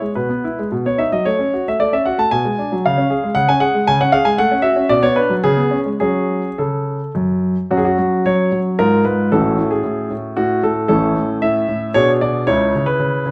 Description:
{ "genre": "classical-period piano sonatina", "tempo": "114 BPM", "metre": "3/4", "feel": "rubato", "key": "F# minor", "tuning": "A4 = 439 Hz", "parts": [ { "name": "clear grand piano", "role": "solo", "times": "0.0-13.3 s", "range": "A1 to A5", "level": "-17 LUFS", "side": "equal", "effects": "none" } ], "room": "moderate recital hall reverb, RT60 1.3 s", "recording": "close, detailed microphones", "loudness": "-17 LUFS", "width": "mono", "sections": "0.0-7.7 A section; 7.7-13.3 B section", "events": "none", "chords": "0.0 E/B; 0.7 B; 1.3 F#m/A; 2.3 G#m7b5/B; 2.8 C#; 4.4 F#m/A; 4.9 Bm; 5.5 C#5; 6.0 F#5; 8.8 Fdim/Ab; 9.3 F#m/A; 10.9 A; 11.9 G#dim/B; 12.5 C#m7" }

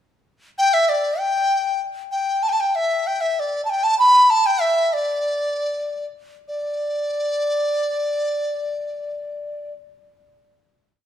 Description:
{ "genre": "chinese traditional", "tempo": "67-99 BPM", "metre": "2/4", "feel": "rubato", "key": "D zhi mode", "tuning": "A4 = 440 Hz", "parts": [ { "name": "mellow hollow dizi", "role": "solo", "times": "0.6-9.7 s", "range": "D5 to B5", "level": "-18 LUFS", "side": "equal", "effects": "none" } ], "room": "moderate recital hall reverb, RT60 1.7 s", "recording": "small room ambience", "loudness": "-18 LUFS", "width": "side -10 dB against mid", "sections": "0.0-1.2 pickup bar; 1.2-6.5 A section; 6.5-10.1 final note", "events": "slowing down 3.7-6.5", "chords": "none" }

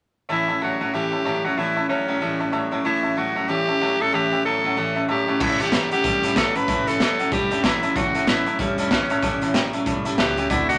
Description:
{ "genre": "rockabilly", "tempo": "188 BPM", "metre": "4/4", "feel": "swing 60% on 8ths", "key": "A mixolydian", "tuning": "A4 = 445 Hz", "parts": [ { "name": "raspy tenor saxophone", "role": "melody", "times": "0.3-10.8 s", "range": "C#4 to B4", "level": "-25 LUFS", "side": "equal", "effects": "none" }, { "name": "picked steel-string acoustic guitar", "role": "accompaniment", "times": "0.3-10.8 s", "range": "A2 to F#4", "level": "-31 LUFS", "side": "equal", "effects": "none" }, { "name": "tack piano", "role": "accompaniment", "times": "0.3-10.8 s", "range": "C#5 to B5", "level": "-31 LUFS", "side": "equal", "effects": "none" }, { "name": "twangy electric guitar", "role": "riff", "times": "0.3-10.8 s", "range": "A2 to A3", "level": "-30 LUFS", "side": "equal", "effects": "none" }, { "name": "upright bass", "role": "bass", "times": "5.4-10.8 s", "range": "E1 to D2", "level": "-37 LUFS", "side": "equal", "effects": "none" }, { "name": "raw garage drum kit", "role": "drums", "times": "5.4-10.8 s", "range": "crash cymbal, hi-hat, kick drum, snare drum", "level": "-26 LUFS", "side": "equal", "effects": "none" } ], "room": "wet small room reverb, RT60 0.5 s", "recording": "none", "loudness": "-22 LUFS", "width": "mono", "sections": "0.3-5.4 A section; 5.4-10.8 B section", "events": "none", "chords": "0.3 A7" }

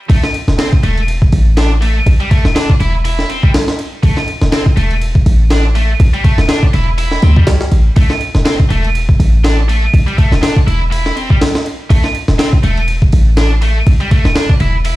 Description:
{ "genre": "breakbeat, breaks", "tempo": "122 BPM", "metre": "4/4", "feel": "swing 56% on 16ths", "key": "A minor", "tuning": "A4 = 440 Hz", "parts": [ { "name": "heavy high-gain guitar", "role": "riff", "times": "0.1-15.0 s", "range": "G3 to E4", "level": "-19 LUFS", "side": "equal", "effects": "distortion, overdrive, vintage 12-bit sampler grit, tape echo" }, { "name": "warm 808-style bass", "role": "bass", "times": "0.1-15.0 s", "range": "E1 to D2", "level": "-12 LUFS", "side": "equal", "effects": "none" }, { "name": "breakbeat sampler-style drum kit", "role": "drums", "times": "0.1-15.0 s", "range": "kick drum, ride cymbal, snare drum", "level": "-13 LUFS", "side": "equal", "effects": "high-pass filter on snare, high-pass filter on cymbals, high-pass filter on kick" } ], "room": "little or no reverb", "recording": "played on a big sound system in a bare room, large studio reverb, vinyl crackle, high-pass filter", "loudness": "-10 LUFS", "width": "side -17 dB against mid", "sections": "0.1-15.0 A section", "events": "drop 0.1-15.0", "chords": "0.1 A5" }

